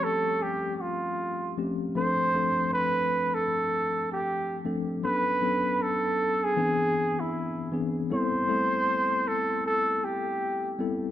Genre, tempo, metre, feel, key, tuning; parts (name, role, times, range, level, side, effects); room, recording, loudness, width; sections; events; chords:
soul; 78 BPM; 4/4; swing 58% on 16ths; A4 = 440 Hz
breathy flugelhorn; melody; 0.0-10.8 s; E4 to C5; -26 LUFS; right 1 dB; slapback echo
tine electric piano; accompaniment; 0.0-11.1 s; E3 to A4; -30 LUFS; left 3 dB; medium stereo tremolo
light reverb, studio ambience; -25 LUFS; side -12 dB against mid
0.0-11.1 A section
0.0 A7alt; 2.0 Dm7; 5.0 Bm9; 6.6 E7b13; 8.1 Am9